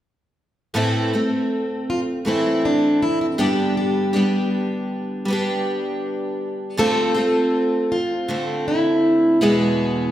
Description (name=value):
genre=acoustic pop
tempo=80 BPM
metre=4/4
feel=straight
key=A minor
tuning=A4 = 440 Hz
part: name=picked twelve-string acoustic guitar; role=accompaniment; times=0.7-10.1 s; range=E2 to G4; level=-20 LUFS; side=equal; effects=none
part: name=picked plugged-in steel-string acoustic guitar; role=melody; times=0.8-10.1 s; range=D4 to A4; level=-20 LUFS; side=equal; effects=none
room=wet recital hall reverb, RT60 1.4 s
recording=recorded in a church or concert hall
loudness=-18 LUFS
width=side -12 dB against mid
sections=0.7-10.1 A section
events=none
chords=0.7 Am; 3.4 G; 6.8 Dm7; 9.4 E